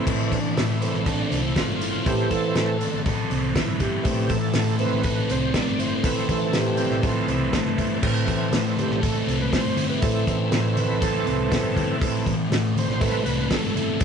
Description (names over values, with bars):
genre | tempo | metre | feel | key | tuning
psychedelic rock | 120 BPM | 4/4 | straight | A minor | A4 = 440 Hz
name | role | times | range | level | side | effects
overdriven tonewheel organ | sustained chords | 0.0-14.0 s | E3 to D5 | -27 LUFS | right 3 dB | slow rotary speaker, chorus vibrato
fuzz guitar | riff | 0.0-14.0 s | A2 to A4 | -24 LUFS | left 1 dB | distortion, phaser
hollow-body short-scale fingered electric bass | bass | 0.1-14.0 s | G1 to A2 | -28 LUFS | left 1 dB | none
damped 70s drum kit | drums | 0.1-14.0 s | crash cymbal, hi-hat, kick drum, snare drum | -26 LUFS | equal | none
congas | percussion | 8.5-13.9 s | none | -35 LUFS | left 1 dB | none
room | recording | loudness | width
wet booth ambience, RT60 0.2 s | rough rehearsal-room recording, warm saturation, nothing above 10.6 kHz | -20 LUFS | side -7 dB against mid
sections
0.0-14.0 A section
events
tonewheel organ solo 0.0-14.0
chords
0.0 Am